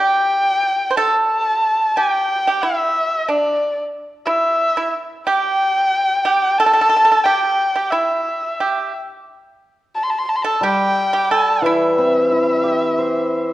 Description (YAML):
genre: chinese traditional, Chinese chamber ensemble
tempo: 90 BPM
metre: 4/4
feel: rubato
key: unclear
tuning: A4 = 440 Hz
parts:
  - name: dark erhu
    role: melody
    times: 0.0-13.5 s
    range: D5 to C6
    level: -17 LUFS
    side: left 1 dB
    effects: none
  - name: pipa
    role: second line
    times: 0.0-13.5 s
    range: D4 to C5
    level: -20 LUFS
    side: right 4 dB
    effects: none
  - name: hammered dulcimer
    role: accompaniment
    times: 10.6-13.5 s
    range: E3 to C5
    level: -17 LUFS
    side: equal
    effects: none
room: wet recital hall reverb, RT60 1.6 s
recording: worn, warbling old tape, cassette tape, warbly pitch drift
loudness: -15 LUFS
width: side -15 dB against mid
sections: 0.0-13.5 A section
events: none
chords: none